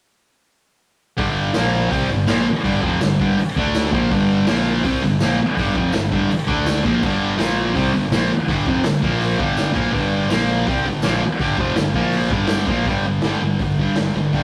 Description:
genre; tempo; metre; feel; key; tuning
garage rock duo or trio; 164 BPM; 4/4; straight; unclear; A4 = 441 Hz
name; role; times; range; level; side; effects
thick fuzz guitar; riff; 1.2-14.4 s; F2 to D4; -20 LUFS; equal; distortion
growling fingered electric bass; bass; 1.2-14.4 s; F1 to D2; -32 LUFS; equal; overdrive, tube saturation
raw garage drum kit; drums; 1.2-14.4 s; crash cymbal, hi-hat, kick drum, snare drum; -26 LUFS; equal; none
tambourine; percussion; 1.5-12.6 s; none; -41 LUFS; equal; none
room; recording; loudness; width
wet studio reverb, RT60 0.6 s; rough rehearsal-room recording; -19 LUFS; mono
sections
1.2-12.9 A section; 12.9-14.4 B section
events
none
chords
1.2 G5; 1.6 Bb5; 1.9 G5; 3.6 D5; 3.9 G5; 4.5 Bb5; 4.8 G5; 6.5 D5; 6.8 G5; 7.4 Bb5; 7.8 G5; 9.0 Bb5; 9.4 G5; 10.3 Bb5; 10.7 G5; 12.0 Bb5; 12.3 G5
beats
| 1.19 1.56 1.92 2.28 | 2.65 3.01 3.38 3.74 | 4.11 4.47 4.84 5.20 | 5.57 5.93 6.30 6.66 | 7.03 7.39 7.75 8.12 | 8.48 8.85 9.21 9.58 | 9.94 10.31 10.67 11.04 | 11.40 11.77 12.14 12.50 | 12.87 13.23 13.60 13.97 | 14.34

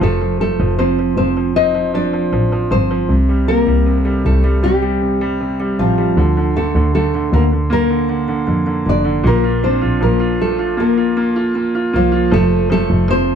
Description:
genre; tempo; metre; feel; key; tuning
pop ballad; 78 BPM; 4/4; straight; Bb major; A4 = 444 Hz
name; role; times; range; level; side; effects
nylon-string guitar; melody; 0.0-13.4 s; F3 to Eb5; -17 LUFS; left 1 dB; slapback echo
bright concert grand piano; accompaniment; 0.0-13.4 s; Bb2 to F4; -18 LUFS; right 2 dB; none
warm double bass; bass; 0.0-13.4 s; F1 to F2; -18 LUFS; equal; none
room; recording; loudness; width
little or no reverb; dry, close 1970s-style studio recording; -13 LUFS; side -8 dB against mid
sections
0.0-12.3 A section; 12.3-13.4 A section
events
none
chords
0.0 F; 3.1 C5; 6.2 Bb/D; 9.3 Bb; 12.3 F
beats
| 0.02 0.79 1.56 2.33 | 3.10 3.87 4.64 5.41 | 6.17 6.94 7.71 8.48 | 9.25 10.02 10.79 11.56 | 12.33 13.10

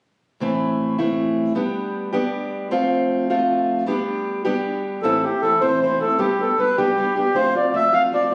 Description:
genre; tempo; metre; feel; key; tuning
celtic folk, Celtic jig; 104 BPM (dotted quarters); 6/8; straight; A minor; A4 = 443 Hz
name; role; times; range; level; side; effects
fingerpicked steel-string acoustic guitar; accompaniment; 0.4-8.3 s; A2 to G4; -23 LUFS; equal; none
mellow accordion; melody; 5.0-8.3 s; G4 to F5; -20 LUFS; equal; none
room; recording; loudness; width
moderate small room reverb, RT60 0.6 s; recorded on a phone in the room, studio reverb; -21 LUFS; mono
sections
0.4-5.0 A section; 5.0-8.3 B section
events
none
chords
0.4 Am; 1.6 G; 2.7 F; 3.9 G; 5.0 Am; 6.2 G; 7.4 F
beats
| 0.41 0.98 | 1.56 2.14 | 2.72 3.30 | 3.88 4.46 | 5.04 5.62 | 6.19 6.77 | 7.35 7.93

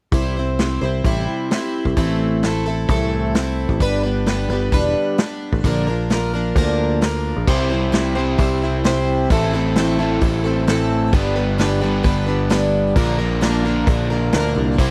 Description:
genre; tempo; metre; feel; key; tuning
folk rock and heartland rock; 131 BPM; 4/4; straight; C mixolydian; A4 = 441 Hz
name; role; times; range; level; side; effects
picked plugged-in twelve-string acoustic guitar; accompaniment; 0.1-14.9 s; G2 to C5; -23 LUFS; equal; none
picked electric bass; bass; 0.1-14.9 s; E1 to D2; -24 LUFS; equal; none
vintage drum kit; drums; 0.1-14.9 s; crash cymbal, hi-hat, kick drum, snare drum; -22 LUFS; equal; none
crunchy overdriven guitar; riff; 7.5-14.9 s; G2 to Bb4; -26 LUFS; equal; none
room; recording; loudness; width
little or no reverb; dry, close 1970s-style studio recording; -19 LUFS; mono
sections
0.1-7.5 A section; 7.5-14.9 B section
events
none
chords
0.1 C; 2.0 Am; 3.8 G; 5.7 Bb; 7.5 C; 9.3 Am; 11.1 G; 13.0 Bb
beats
| 0.13 0.59 1.05 1.51 | 1.97 2.43 2.89 3.35 | 3.81 4.27 4.73 5.19 | 5.65 6.11 6.57 7.03 | 7.48 7.94 8.40 8.86 | 9.31 9.77 10.23 10.68 | 11.14 11.60 12.05 12.51 | 12.96 13.42 13.88 14.33 | 14.79

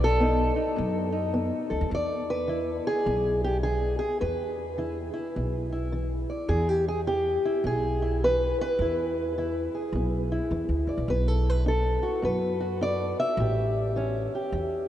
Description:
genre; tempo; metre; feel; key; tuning
acoustic country blues, solo or duo; 104 BPM; 4/4; swing 63% on 8ths; E major; A4 = 440 Hz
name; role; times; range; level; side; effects
fingerpicked steel-string acoustic guitar; melody; 0.0-14.9 s; E2 to E5; -26 LUFS; equal; none
upright bass; bass; 0.0-14.9 s; A1 to F#2; -29 LUFS; equal; none
room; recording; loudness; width
wet huge ambient reverb, RT60 8.5 s; in a vast, echoing space, nothing above 10.8 kHz; -24 LUFS; side -12 dB against mid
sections
0.0-1.9 A section; 1.9-14.9 B section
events
steel-string acoustic guitar solo 0.0-1.9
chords
0.0 B7; 1.9 E; 11.1 B7; 13.4 A7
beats
0.21 0.78 1.35 | 1.92 2.49 3.06 3.63 | 4.21 4.78 5.35 5.92 | 6.50 7.07 7.64 8.22 | 8.79 9.37 9.94 10.52 | 11.09 11.67 12.24 12.82 | 13.39 13.97 14.54

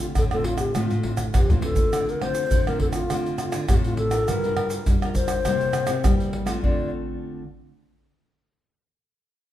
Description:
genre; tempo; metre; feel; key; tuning
samba and choro; 102 BPM; 4/4; straight; D minor; A4 = 441 Hz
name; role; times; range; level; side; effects
breathy mellow wooden-headed alto flute; melody; 0.0-6.9 s; F4 to D5; -26 LUFS; left 2 dB; none
nylon-string guitar; accompaniment; 0.0-7.4 s; G2 to Bb4; -30 LUFS; left 3 dB; none
nylon-string guitar; bass; 0.0-6.9 s; G2 to G3; -30 LUFS; equal; none
egg shaker, surdo, pandeiro and tamborim; percussion; 0.2-6.8 s; none; -23 LUFS; equal; none
room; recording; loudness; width
moderate large studio reverb, RT60 1.2 s; band playing live in one room; -20 LUFS; side -12 dB against mid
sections
0.0-1.9 A section; 1.9-6.6 B section; 6.6-9.0 C section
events
drum fill 1.2-1.9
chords
0.0 Dm7; 4.3 Gm7; 5.5 C7; 6.6 Dm7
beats
0.16 0.75 1.34 | 1.93 2.52 3.10 3.69 | 4.28 4.87 5.46 6.04 | 6.63 7.22

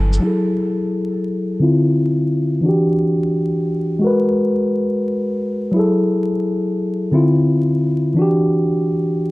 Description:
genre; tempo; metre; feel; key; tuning
hip hop; 87 BPM; 4/4; swing 65% on 16ths; unclear; A4 = 440 Hz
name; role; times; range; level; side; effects
mellow tine electric piano; accompaniment; 0.0-9.3 s; D3 to G#5; -15 LUFS; equal; low-pass filter
room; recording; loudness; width
moderate plate reverb, RT60 2.9 s; vinyl crackle; -15 LUFS; side -19 dB against mid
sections
0.2-9.3 A section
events
filter sweep on tine electric piano 0.2-9.3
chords
0.2 F#m9; 1.6 Dm9; 2.7 Em9; 4.0 G#m9; 5.8 F#m9; 7.1 Dm9; 8.2 Em9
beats
| 0.24 0.93 1.62 2.31 | 3.00 3.69 4.38 5.06 | 5.75 6.44 7.13 7.82 | 8.51 9.20

